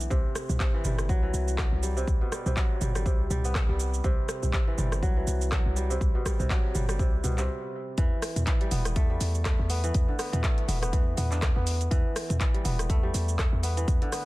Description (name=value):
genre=afro house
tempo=122 BPM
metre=4/4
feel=swing 57% on 16ths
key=E minor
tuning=A4 = 440 Hz
part: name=kora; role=arpeggios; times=0.0-14.2 s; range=B2 to D4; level=-33 LUFS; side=equal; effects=sidechain pumping, dub echo
part: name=warm 808-style bass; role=bass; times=0.0-14.0 s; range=E1 to E2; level=-29 LUFS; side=equal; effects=sidechain pumping
part: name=house drum kit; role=drums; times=0.0-14.2 s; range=handclaps, hi-hat, rim click, shaker, toms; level=-33 LUFS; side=right 1 dB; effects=none
part: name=electronic kick drum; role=drums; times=0.1-14.0 s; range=none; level=-26 LUFS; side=equal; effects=none
room=little or no reverb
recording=dense, heavily limited modern master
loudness=-24 LUFS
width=side -19 dB against mid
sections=0.0-8.0 A section; 8.0-14.2 B section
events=stop 7.5-8.0; drop 8.0-14.2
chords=0.1 Cmaj7; 8.0 Em7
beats=| 0.11 0.60 1.09 1.58 | 2.08 2.57 3.06 3.55 | 4.04 4.54 5.03 5.52 | 6.01 6.50 7.00 7.49 | 7.98 8.47 8.96 9.45 | 9.95 10.44 10.93 11.42 | 11.91 12.40 12.90 13.39 | 13.88